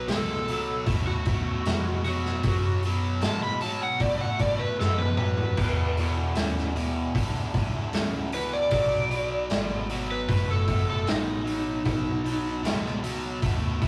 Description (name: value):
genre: blues rock power trio and southern rock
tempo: 76 BPM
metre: 4/4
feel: straight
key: B mixolydian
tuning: A4 = 440 Hz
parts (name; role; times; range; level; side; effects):
- overdriven slide guitar; melody; 0.0-12.6 s; D#4 to B5; -31 LUFS; equal; none
- mellow tonewheel organ; sustained chords; 0.0-13.9 s; B3 to A5; -45 LUFS; equal; none
- cranked stack guitar; riff; 0.0-13.9 s; E2 to A3; -34 LUFS; equal; overdrive
- vintage muted fingered electric bass; bass; 0.0-13.9 s; F#1 to A2; -33 LUFS; equal; none
- vintage drum kit; drums; 0.1-13.9 s; crash cymbal, hi-hat, kick drum, snare drum, toms; -31 LUFS; equal; none
room: moderate booth ambience, RT60 0.2 s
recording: rough rehearsal-room recording, warm saturation, small room reverb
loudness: -27 LUFS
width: mono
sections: 0.0-13.9 A section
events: electric slide guitar solo 0.0-13.9; drum fill 4.8-5.6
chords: 0.0 B7; 5.6 E7; 8.7 B7